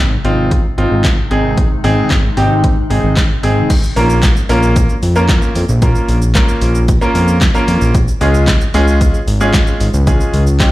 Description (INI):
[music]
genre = dance-pop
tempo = 113 BPM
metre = 4/4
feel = straight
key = Bb minor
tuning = A4 = 440 Hz
[part]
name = clear baby grand piano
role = accompaniment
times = 0.0-10.7 s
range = Ab3 to Bb4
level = -16 LUFS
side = equal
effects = sidechain pumping
[part]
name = granular cloud pad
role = sustained chords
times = 0.0-3.7 s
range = C3 to Eb4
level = -23 LUFS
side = left 1 dB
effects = built-in reverb, sidechain pumping
[part]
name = fat analog bass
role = bass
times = 0.0-10.7 s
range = Ab1 to F2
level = -14 LUFS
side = equal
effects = sidechain pumping
[part]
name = punchy analog drum machine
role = drums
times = 0.2-10.7 s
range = crash cymbal, handclaps, hi-hat, kick drum, shaker, snare drum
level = -14 LUFS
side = equal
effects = none
[sound]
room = little or no reverb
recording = played on a big sound system in a bare room, large studio reverb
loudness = -10 LUFS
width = side -16 dB against mid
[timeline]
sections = 0.0-3.7 A section; 3.7-10.7 B section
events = none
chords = 0.0 Ab; 3.7 Bbm; 7.9 Db